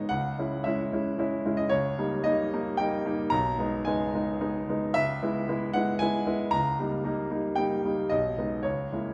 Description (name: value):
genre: classical, romantic character piece for solo piano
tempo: 112 BPM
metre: 3/4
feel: rubato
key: G# minor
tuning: A4 = 440 Hz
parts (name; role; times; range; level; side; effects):
- clear grand piano; solo; 0.0-9.1 s; B1 to A#5; -28 LUFS; equal; none
room: wet recital hall reverb, RT60 1.7 s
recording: none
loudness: -28 LUFS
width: mono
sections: 0.0-9.1 A section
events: none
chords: 0.1 C#m; 1.7 D#7/C#; 3.3 G#m/B; 4.9 C#m7; 6.5 D#7/C#; 8.1 G#m/B